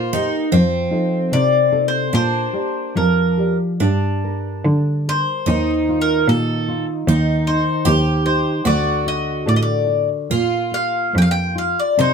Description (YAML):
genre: fado-style ballad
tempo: 70-77 BPM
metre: 2/4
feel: rubato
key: Bb major, G minor from 3.8 s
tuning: A4 = 440 Hz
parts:
  - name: mandolin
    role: melody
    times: 0.0-12.1 s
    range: A4 to G5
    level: -20 LUFS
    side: left 2 dB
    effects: none
  - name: picked twelve-string acoustic guitar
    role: second line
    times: 0.0-12.1 s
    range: C4 to G4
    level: -23 LUFS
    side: right 3 dB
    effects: none
  - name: nylon-string guitar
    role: accompaniment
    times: 0.0-12.1 s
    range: C3 to D5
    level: -23 LUFS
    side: left 1 dB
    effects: none
  - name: rich cello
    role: bass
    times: 0.0-12.1 s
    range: D2 to D3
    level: -20 LUFS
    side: right 1 dB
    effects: none
room: light reverb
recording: close, detailed microphones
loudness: -16 LUFS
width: side -6 dB against mid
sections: 0.0-3.8 A section; 3.8-12.1 B section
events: none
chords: 0.0 Eb; 0.5 F7; 2.1 Bb6; 3.8 Gm; 5.5 Ebsus2; 7.1 Cm/Eb; 8.7 D; 10.3 Bb5